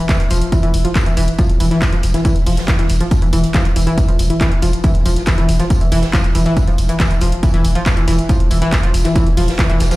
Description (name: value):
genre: driving peak-time techno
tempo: 139 BPM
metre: 4/4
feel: straight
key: unclear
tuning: A4 = 441 Hz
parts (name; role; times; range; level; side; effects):
- analog pluck; riff; 0.0-10.0 s; E3 to F3; -18 LUFS; equal; chorus, tube saturation, sidechain pumping, dub echo
- electronic kick drum; drums; 0.1-9.7 s; none; -15 LUFS; equal; overdrive
- open jazz drum kit; drums; 0.1-10.0 s; hi-hat, snare drum, tambourine; -31 LUFS; right 1 dB; high-pass filter on hats, high-pass filter on snare, high-pass filter on perc, high-pass filter on room
- punchy analog drum machine; drums; 0.1-10.0 s; handclaps, hi-hat; -24 LUFS; equal; sidechain pumping on hats, sidechain pumping on cymbals
- saturated sub bass; bass; 0.2-9.9 s; E1; -17 LUFS; equal; overdrive, sidechain pumping, low-pass filter
room: light reverb, small room ambience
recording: played on a big sound system in a bare room, stone room reverb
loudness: -12 LUFS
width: side -18 dB against mid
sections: 0.0-10.0 A section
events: none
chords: none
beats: 0.09 0.52 0.95 | 1.39 1.82 2.25 2.68 | 3.11 3.54 3.98 4.41 | 4.84 5.27 5.70 6.13 | 6.57 7.00 7.43 7.86 | 8.29 8.72 9.16 9.59